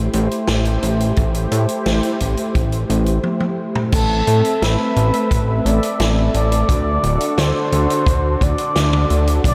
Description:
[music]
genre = synthwave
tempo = 87 BPM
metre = 4/4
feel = straight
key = A dorian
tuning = A4 = 440 Hz
[part]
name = warm analog pad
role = sustained chords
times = 0.0-9.5 s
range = D3 to E5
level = -24 LUFS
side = equal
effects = chorus, sidechain pumping
[part]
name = fat analog bass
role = bass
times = 0.0-9.5 s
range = D1 to A2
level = -20 LUFS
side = equal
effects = sidechain pumping
[part]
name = swinging big-band drum kit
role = drums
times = 0.1-9.5 s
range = crash cymbal, hi-hat, snare drum, toms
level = -27 LUFS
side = equal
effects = none
[part]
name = kick drum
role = drums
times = 1.2-9.5 s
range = none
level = -21 LUFS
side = equal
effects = none
[part]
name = expressive synth lead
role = melody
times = 3.9-9.5 s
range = A4 to D5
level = -23 LUFS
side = equal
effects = chorus, vintage 12-bit sampler grit, tape echo
[sound]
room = moderate cathedral reverb, RT60 6.9 s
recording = dreamy mix soaked in reverb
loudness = -17 LUFS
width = mono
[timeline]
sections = 0.0-3.9 A section; 3.9-9.5 B section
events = drum fill 3.2-3.9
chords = 0.0 Am7; 3.9 Am; 6.7 D

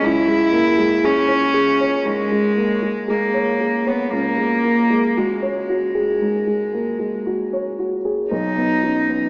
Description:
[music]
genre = neoclassical piano and strings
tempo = 58 BPM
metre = 4/4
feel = rubato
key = unclear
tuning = A4 = 441 Hz
[part]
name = warm cello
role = second line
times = 0.0-9.3 s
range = G#3 to E4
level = -19 LUFS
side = equal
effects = none
[part]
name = dark grand piano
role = accompaniment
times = 0.0-9.3 s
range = B1 to C#5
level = -19 LUFS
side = equal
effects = none
[sound]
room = wet lush hall reverb, RT60 2.9 s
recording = dreamy mix soaked in reverb, small speaker sound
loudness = -16 LUFS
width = side -38 dB against mid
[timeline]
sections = 0.0-9.3 A section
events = none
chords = 0.0 C#m; 4.1 F#sus2/C#; 8.3 B

